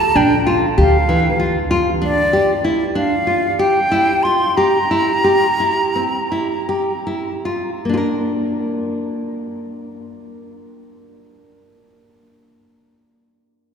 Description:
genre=contemporary instrumental, contemporary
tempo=147-192 BPM (eighths)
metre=9/8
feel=straight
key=Bb lydian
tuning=A4 = 440 Hz
part: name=bright silver concert flute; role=melody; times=0.0-7.1 s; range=D5 to C6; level=-18 LUFS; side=equal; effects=none
part: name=nylon-string guitar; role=arpeggios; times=0.0-11.9 s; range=E3 to Bb4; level=-18 LUFS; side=equal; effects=none
part: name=upright bass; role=bass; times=0.2-1.5 s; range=Bb1 to D2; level=-21 LUFS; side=right 1 dB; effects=none
room=wet cathedral reverb, RT60 6.0 s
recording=recorded in a church or concert hall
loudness=-15 LUFS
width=side -6 dB against mid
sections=0.0-7.9 A section; 7.9-11.5 B section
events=slowing down 2.3-7.9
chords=0.0 Gm7/Bb; 1.7 Dmadd9; 4.6 C7 (rootless); 7.9 Bb

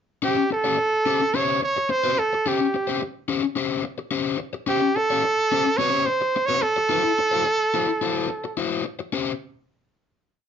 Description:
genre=funk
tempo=108 BPM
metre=4/4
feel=straight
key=unclear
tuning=A4 = 440 Hz
part: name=bright trumpet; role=melody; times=0.2-8.6 s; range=G4 to C#5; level=-21 LUFS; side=right 3 dB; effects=none
part: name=overdriven electric guitar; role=accompaniment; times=0.2-9.3 s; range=C#4 to C#5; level=-25 LUFS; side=left 7 dB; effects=none
room=moderate small room reverb, RT60 0.5 s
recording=dark, warm production, nothing above 7.5 kHz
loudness=-20 LUFS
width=side -8 dB against mid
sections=0.2-9.1 A section; 9.1-10.5 final chord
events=none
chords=0.2 A7#9; 6.9 Am6/E; 9.1 C5

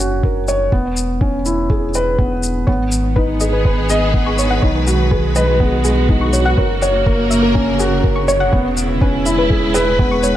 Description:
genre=piano and strings electronica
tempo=123 BPM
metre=4/4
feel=straight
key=C# dorian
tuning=A4 = 442 Hz
part: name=felt-muted upright piano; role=riff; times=0.0-10.4 s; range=A#3 to D#5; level=-18 LUFS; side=equal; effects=low-pass filter, digital delay
part: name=warm sub bass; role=bass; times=0.0-10.4 s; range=E1 to B1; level=-20 LUFS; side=equal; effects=sidechain pumping
part: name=electronic kick drum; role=drums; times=0.2-10.1 s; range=none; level=-16 LUFS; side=equal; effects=none
part: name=shaker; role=drums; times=0.5-10.3 s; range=none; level=-25 LUFS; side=left 4 dB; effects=overdrive
part: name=warm symphonic string section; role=sustained chords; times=2.7-10.4 s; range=C#3 to B4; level=-20 LUFS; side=right 1 dB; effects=sidechain pumping
part: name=soft round pluck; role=arpeggios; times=2.7-10.3 s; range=G#4 to C#6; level=-23 LUFS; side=left 2 dB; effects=chorus, sidechain pumping, digital delay
room=light reverb, small room reverb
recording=dark, warm production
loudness=-13 LUFS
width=side -12 dB against mid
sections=0.0-10.4 A section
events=filter sweep on felt piano 0.0-10.4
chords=0.0 F#; 0.7 C#m7/E; 2.7 G#m; 4.6 B6; 6.6 F#; 8.5 C#m7/E

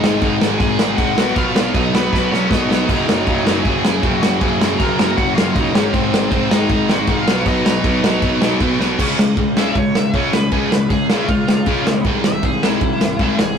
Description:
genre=punk rock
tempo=157 BPM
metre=4/4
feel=straight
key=Db major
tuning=A4 = 442 Hz
part: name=cranked stack guitar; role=melody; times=0.0-13.6 s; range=Cb4 to Bb5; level=-22 LUFS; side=equal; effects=overdrive
part: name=distorted electric guitar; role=riff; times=0.0-13.6 s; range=Gb2 to Db4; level=-22 LUFS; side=right 6 dB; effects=overdrive
part: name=sludgy distorted guitar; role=riff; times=0.0-13.6 s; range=Gb2 to Db4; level=-20 LUFS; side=left 5 dB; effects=overdrive
part: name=fuzz picked electric bass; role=bass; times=0.0-13.6 s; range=Gb1 to Db2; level=-26 LUFS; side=equal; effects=overdrive
part: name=loose indie drum kit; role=drums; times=0.0-13.5 s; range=crash cymbal, kick drum, snare drum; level=-18 LUFS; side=equal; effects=none
room=light reverb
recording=rough rehearsal-room recording, warm saturation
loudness=-14 LUFS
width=side -7 dB against mid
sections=0.0-9.0 A section; 9.0-13.6 B section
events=drum fill 2.1-2.9, 8.8; overdriven electric guitar solo 9.0-13.6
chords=0.0 Ab5; 1.2 Cb; 2.9 Gb; 5.8 Ab; 7.3 Cb; 9.0 Db; 12.1 Ab/C

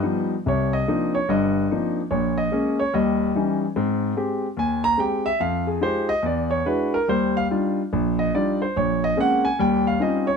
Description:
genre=solo jazz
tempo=145 BPM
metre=4/4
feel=swing 65% on 8ths, rubato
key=C minor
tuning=A4 = 440 Hz
part: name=clear concert grand piano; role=solo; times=0.0-10.4 s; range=G1 to Bb5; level=-20 LUFS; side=left 1 dB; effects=none
room=moderate studio reverb, RT60 1.0 s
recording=none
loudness=-20 LUFS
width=side -6 dB against mid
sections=0.5-10.4 A section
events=grand piano solo 0.0-10.4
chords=0.5 Cm11; 2.1 Bbm7; 2.9 Eb7b9; 3.8 Abmaj7; 5.4 Fm9; 6.2 E9; 7.1 Ebmaj9; 8.8 Bbm9; 9.6 Eb13

